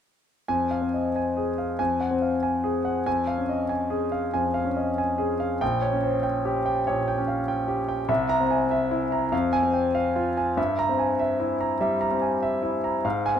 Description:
classical, virtuoso piano study; 96 BPM; 4/4; rubato; F minor; A4 = 440 Hz
clear concert grand piano; solo; 0.5-13.4 s; Bb1 to Bb5; -22 LUFS; equal
moderate large studio reverb, RT60 0.8 s; -22 LUFS; side -8 dB against mid
0.5-13.4 A section
0.5 Fm; 1.8 Ab7/F; 3.1 Db/F; 5.6 Gdim/Bb; 8.1 C7; 9.3 Fm; 10.6 C7/G
| 0.49 1.15 1.79 2.43 | 3.06 3.70 4.34 4.98 | 5.61 6.24 6.87 7.48 | 8.09 8.71 9.32 9.94 | 10.57 11.19 11.81 12.43 | 13.05

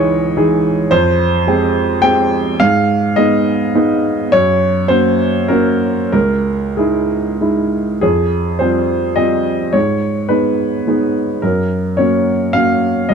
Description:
neoclassical minimalist piano; 90-109 BPM; 3/4; rubato; F minor; A4 = 440 Hz
clear upright piano; solo; 0.0-13.1 s; Db2 to G5; -12 LUFS; right 1 dB
light reverb; dark, warm production; -12 LUFS; side -6 dB against mid
0.0-8.0 A section; 8.0-13.1 B section
0.0 Dbmadd9; 0.9 Fmadd9; 2.6 Abm; 4.3 Gb; 6.1 Dbmadd9; 8.0 Fmadd9; 9.7 Abm; 11.4 Gb
0.36 | 0.92 1.48 2.03 | 2.60 3.17 3.73 | 4.32 4.90 5.49 | 6.12 6.78 7.41 | 8.03 8.60 9.17 | 9.74 10.31 10.87 | 11.43 11.98 12.53 | 13.10

